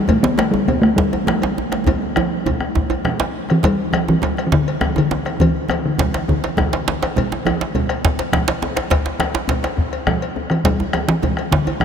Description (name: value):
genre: west african traditional, West African drum ensemble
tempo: 136 BPM (dotted quarters)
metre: 12/8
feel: straight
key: G major pentatonic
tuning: A4 = 440 Hz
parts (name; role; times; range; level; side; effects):
- talking drum; melody; 0.0-6.6, 10.5-11.8 s; D3 to B3; -19 LUFS; left 1 dB; analog delay
- bombo; percussion; 0.1-11.8 s; none; -24 LUFS; left 2 dB; none
- congas; percussion; 0.1-11.8 s; none; -25 LUFS; right 6 dB; none
- cowbell; percussion; 0.1-11.8 s; none; -29 LUFS; left 8 dB; none
- djembe; percussion; 0.1-11.8 s; none; -25 LUFS; left 3 dB; none
- djembe; percussion; 0.1-11.8 s; none; -24 LUFS; right 5 dB; none
room: wet huge ambient reverb, RT60 8.6 s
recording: dreamy mix soaked in reverb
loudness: -16 LUFS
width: side -7 dB against mid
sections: 0.0-3.6 A section; 3.6-11.8 B section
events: drum fill 1.9-3.6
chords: none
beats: | 0.09 0.54 0.98 1.43 | 1.87 2.31 2.76 3.20 | 3.64 4.08 4.53 4.97 | 5.41 5.85 6.29 6.72 | 7.16 7.60 8.04 8.48 | 8.91 9.35 9.79 10.22 | 10.65 11.09 11.52